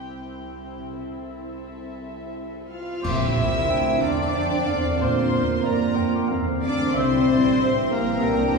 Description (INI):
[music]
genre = cinematic, emotional film score for orchestra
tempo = 90 BPM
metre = 3/4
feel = uneven beats, rubato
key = unclear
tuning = A4 = 439 Hz
[part]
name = dark chamber violin section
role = second line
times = 0.0-8.6 s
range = G4 to G5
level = -28 LUFS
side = equal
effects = none
[part]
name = dark studio viola section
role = accompaniment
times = 0.0-8.6 s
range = Bb3 to G4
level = -29 LUFS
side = right 3 dB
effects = none
[part]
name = concert harp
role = arpeggios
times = 0.0-8.6 s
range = Bb2 to E6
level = -31 LUFS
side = left 3 dB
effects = none
[part]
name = warm studio cello section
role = bass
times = 0.0-8.6 s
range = C2 to F4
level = -27 LUFS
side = equal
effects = none
[part]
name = warm studio violin section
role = melody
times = 2.7-8.6 s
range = Bb5 to F6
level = -32 LUFS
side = left 4 dB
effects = none
[part]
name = mellow cor anglais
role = second line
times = 3.0-7.2 s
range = C5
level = -38 LUFS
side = equal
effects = none
[part]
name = silver concert flute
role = second line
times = 3.0-7.3 s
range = D6 to E6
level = -38 LUFS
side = right 1 dB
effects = none
[part]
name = dark French horn section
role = sustained chords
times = 3.0-8.6 s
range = D3 to C4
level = -29 LUFS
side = equal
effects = none
[part]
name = dark studio double bass section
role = bass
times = 3.0-8.6 s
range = A1 to G2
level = -30 LUFS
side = right 3 dB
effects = none
[part]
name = clash cymbals and concert bass drum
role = percussion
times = 3.0-4.3 s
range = none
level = -35 LUFS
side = right 1 dB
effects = none
[part]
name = warm clarinet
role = second line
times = 3.7-8.6 s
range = D5 to G5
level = -31 LUFS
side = left 2 dB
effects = none
[sound]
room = wet concert hall reverb, RT60 2.3 s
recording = heard from further back in the room, small room ambience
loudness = -19 LUFS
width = side -4 dB against mid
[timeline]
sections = 0.0-3.0 A section; 3.0-8.6 B section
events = band accent 3.0-3.7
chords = 0.0 C; 1.0 Am/C; 3.0 Bbadd9; 7.0 C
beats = 0.30 | 0.97 1.65 2.34 | 3.04 3.70 4.35 | 5.00 5.65 6.30 | 6.96 7.61 8.24